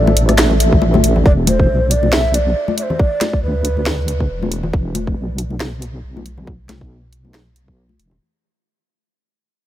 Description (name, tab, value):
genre	deep dubstep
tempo	138 BPM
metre	4/4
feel	swing 56% on 16ths, half-time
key	unclear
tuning	A4 = 440 Hz
part	breathy mellow low ney	melody	0.0-4.5 s	B4 to E5	-22 LUFS	right 1 dB	dub echo
part	deep dark ambient pad	sustained chords	0.0-1.2 s	D4 to E5	-24 LUFS	equal	chorus, built-in reverb
part	deep soft wobble bass	bass	0.0-8.2 s	E1 to D2	-17 LUFS	equal	chorus
part	congas	percussion	0.1-8.2 s	none	-21 LUFS	left 3 dB	dub echo
part	garage drum kit	drums	0.2-8.1 s	handclaps, hi-hat, rim click, snare drum	-20 LUFS	equal	none
part	electronic kick drum	drums	0.7-7.8 s	none	-14 LUFS	equal	none
room	light reverb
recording	none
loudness	-14 LUFS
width	side -12 dB against mid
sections	0.0-1.3 A section; 1.3-8.2 B section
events	drop 0.0-1.3; fade-out 1.3-8.2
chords	0.0 D5; 1.3 E5